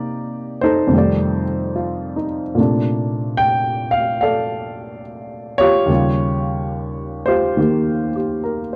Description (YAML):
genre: solo jazz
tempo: 72 BPM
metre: 4/4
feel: swing 66% on 8ths, rubato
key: unclear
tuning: A4 = 440 Hz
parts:
  - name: dark baby grand piano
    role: solo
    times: 0.0-8.8 s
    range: Eb2 to G5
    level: -19 LUFS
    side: equal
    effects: none
room: little or no reverb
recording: dry, close 1970s-style studio recording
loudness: -19 LUFS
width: mono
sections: 0.0-8.8 A section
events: none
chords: 0.0 Cm9; 0.9 F13; 2.6 Bbmaj9; 5.9 Eb9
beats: 0.11 0.93 1.75 | 2.58 3.40 4.22 5.05 | 5.89 6.73 7.58 8.44